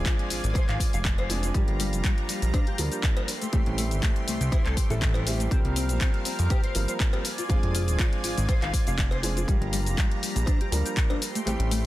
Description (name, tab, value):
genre	nu-disco, nu disco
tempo	121 BPM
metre	4/4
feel	swing 53% on 16ths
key	unclear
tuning	A4 = 440 Hz
part	dark concert grand piano	accompaniment	0.0-11.9 s	E3 to Bb4	-33 LUFS	right 1 dB	sidechain pumping, digital delay
part	lush unison pad	sustained chords	0.0-11.9 s	G3 to C6	-36 LUFS	equal	chorus, sidechain pumping
part	fat analog bass	bass	0.0-11.9 s	D1 to F2	-27 LUFS	equal	none
part	mellow electric guitar	riff	0.1-11.8 s	G3 to F5	-36 LUFS	left 3 dB	ensemble chorus, vintage 12-bit sampler grit, low-pass filter, digital delay
part	electronic kick drum	drums	0.1-11.1 s	none	-24 LUFS	equal	none
part	house drum kit	drums	0.1-11.8 s	handclaps, hi-hat, shaker	-32 LUFS	left 2 dB	none
part	cowbell	percussion	0.5-11.2 s	none	-41 LUFS	equal	none
room	digital ambience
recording	dense, heavily limited modern master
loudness	-23 LUFS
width	side -16 dB against mid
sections	0.0-11.9 A section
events	filter sweep on clean electric guitar 0.0-11.9; kick drops out 11.5-11.9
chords	0.0 Fm6; 1.5 Gm7; 3.3 Am7; 5.5 C7sus4; 7.2 Fm6; 9.5 Gm7; 11.2 Am7